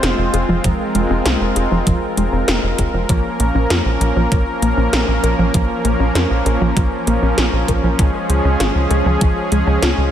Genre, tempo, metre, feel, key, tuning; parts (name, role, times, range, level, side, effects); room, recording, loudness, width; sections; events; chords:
synthwave; 98 BPM; 4/4; straight; A4 = 440 Hz
soft supersaw; sustained chords; 0.0-10.1 s; F3 to C5; -19 LUFS; equal; sidechain pumping
analog pluck; arpeggios; 0.0-9.9 s; F3 to Bb4; -23 LUFS; equal; chorus, digital delay
tight sequencer bass; bass; 0.0-10.1 s; F1 to F2; -18 LUFS; equal
80s electronic pad drums; drums; 0.0-9.9 s; hi-hat, snare drum; -22 LUFS; equal
electronic kick drum; drums; 0.6-9.3 s; -18 LUFS; equal
light reverb; -14 LUFS; side -10 dB against mid
0.0-10.1 A section
filter sweep on synth arpeggio sound 0.0-10.1
0.0 Fm; 3.1 Bbm; 8.0 Db